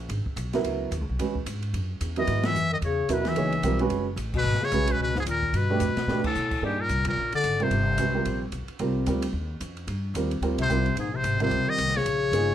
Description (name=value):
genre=modal jazz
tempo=221 BPM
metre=4/4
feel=swing 59% on 8ths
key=C# dorian, C phrygian from 6.6 s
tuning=A4 = 438 Hz
part: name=upright bass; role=bass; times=0.0-12.5 s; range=F#1 to B2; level=-29 LUFS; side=equal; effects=none
part: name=open jazz drum kit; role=drums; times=0.1-12.4 s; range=crash cymbal, hi-hat, kick drum, ride cymbal, snare drum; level=-36 LUFS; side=equal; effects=none
part: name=warm grand piano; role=accompaniment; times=0.5-12.5 s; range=F3 to D5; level=-28 LUFS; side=right 4 dB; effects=none
part: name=trumpet with metal mute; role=melody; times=2.2-8.4, 10.6-12.5 s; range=G4 to E5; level=-28 LUFS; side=equal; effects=none
part: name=dark bass clarinet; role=second line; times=2.2-8.4, 10.6-12.5 s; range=G2 to E3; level=-29 LUFS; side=left 5 dB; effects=none
room=moderate club reverb, RT60 0.6 s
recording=none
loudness=-24 LUFS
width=side -11 dB against mid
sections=0.0-6.6 A section; 6.6-12.5 B section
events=band accent 2.4, 4.3, 6.2, 7.0, 10.6; drum fill 6.1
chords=0.0 C#m11; 5.5 G7; 6.6 Cm11; 11.0 Bbm11